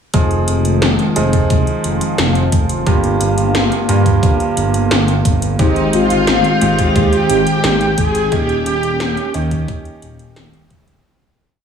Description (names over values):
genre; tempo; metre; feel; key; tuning
synthwave; 88 BPM; 4/4; straight; F minor; A4 = 444 Hz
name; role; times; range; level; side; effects
phased analog pad; sustained chords; 0.1-11.0 s; D3 to G5; -21 LUFS; left 2 dB; phaser, chorus, sidechain pumping
clear concert grand piano; stabs; 0.1-11.0 s; G2 to Ab4; -20 LUFS; right 4 dB; digital delay
dark detuned saw bass; bass; 0.1-11.0 s; Eb1 to G2; -17 LUFS; equal; none
80s electronic pad drums; drums; 0.1-11.0 s; hi-hat, snare drum; -19 LUFS; left 2 dB; none
electronic kick drum; drums; 0.1-10.8 s; none; -17 LUFS; equal; none
mellow synth brass; melody; 5.6-9.3 s; Eb4 to Ab4; -18 LUFS; equal; chorus, phaser, digital delay
string machine, violins; second line; 5.6-9.3 s; Eb4 to Ab4; -22 LUFS; equal; ensemble chorus, digital delay
room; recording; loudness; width
light reverb, digital ambience; studio ambience; -12 LUFS; side -7 dB against mid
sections
0.1-11.0 verse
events
fade-out 7.4-11.0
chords
0.1 Fm7; 2.9 Gm7; 5.6 Abmaj7; 8.3 Eb7